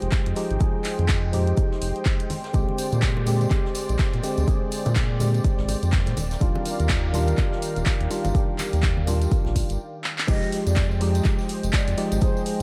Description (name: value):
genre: deep house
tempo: 124 BPM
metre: 4/4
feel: swing 59% on 16ths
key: F dorian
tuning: A4 = 440 Hz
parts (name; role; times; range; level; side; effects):
- warm analog pad; sustained chords; 0.0-12.6 s; Ab3 to G5; -37 LUFS; equal; chorus, sidechain pumping
- percussive organ stab; stabs; 0.0-12.6 s; D3 to Ab4; -31 LUFS; equal; chorus, tape echo
- round analog bass; bass; 0.0-12.6 s; Eb1 to Bb2; -26 LUFS; equal; sidechain pumping
- punchy analog drum machine; drums; 0.0-12.6 s; crash cymbal, handclaps, hi-hat; -34 LUFS; equal; none
- electronic kick drum; drums; 0.1-12.3 s; none; -25 LUFS; equal; none
- jazz brush drum kit; drums; 0.1-12.6 s; hi-hat, shaker, snare drum; -48 LUFS; equal; none
- congas; percussion; 1.0-9.5 s; none; -37 LUFS; equal; none
- warbly tape-like pad; texture; 2.3-12.6 s; Eb3 to G5; -39 LUFS; equal; none
- tambourine; percussion; 2.5-12.4 s; none; -44 LUFS; equal; none
- breathy mellow concert flute; melody; 10.3-12.6 s; C5 to Eb5; -36 LUFS; equal; tape echo
room: light reverb, small room ambience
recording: none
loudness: -23 LUFS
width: mono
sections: 0.0-10.3 A section; 10.3-12.6 B section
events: filter sweep on synth stab 0.0-10.3; stop 9.8-10.3; drum fill 10.0; band accent 10.2; drop 10.3-12.6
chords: 0.0 Fm9; 2.3 Bb13; 6.2 Ebmaj9; 10.3 Fm9